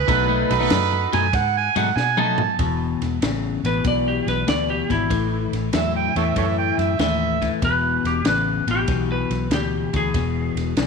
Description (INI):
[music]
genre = electric blues shuffle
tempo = 95 BPM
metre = 4/4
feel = swing 68% on 8ths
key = E major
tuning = A4 = 440 Hz
[part]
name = overdriven harmonica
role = second line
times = 0.0-7.5 s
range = A4 to A5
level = -22 LUFS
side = right 8 dB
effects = none
[part]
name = vintage muted fingered electric bass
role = bass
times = 0.0-10.9 s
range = E1 to B2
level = -25 LUFS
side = right 1 dB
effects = none
[part]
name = electric guitar at the edge of break-up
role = riff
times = 0.1-10.9 s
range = E2 to D#4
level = -24 LUFS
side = left 12 dB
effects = phaser
[part]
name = warm horn section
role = stabs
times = 0.1-1.2 s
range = D#4 to B4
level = -23 LUFS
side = right 9 dB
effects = none
[part]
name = compact cocktail drum kit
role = drums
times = 0.1-10.9 s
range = kick drum, ride cymbal, snare drum, toms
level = -27 LUFS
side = equal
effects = none
[part]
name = clean lap steel guitar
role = melody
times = 3.7-10.9 s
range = E4 to D5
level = -24 LUFS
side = equal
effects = none
[sound]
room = moderate echo chamber reverb, RT60 1.6 s, small room ambience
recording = 1960s-style stereo with parts hard left and right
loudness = -18 LUFS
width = side -5 dB against mid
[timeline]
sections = 0.0-2.6 A section; 2.6-10.9 B section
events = harmonica solo 0.0-2.6; drum fill 2.0-2.6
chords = 0.1 B7; 2.6 E7(no3); 5.1 A5; 7.6 E7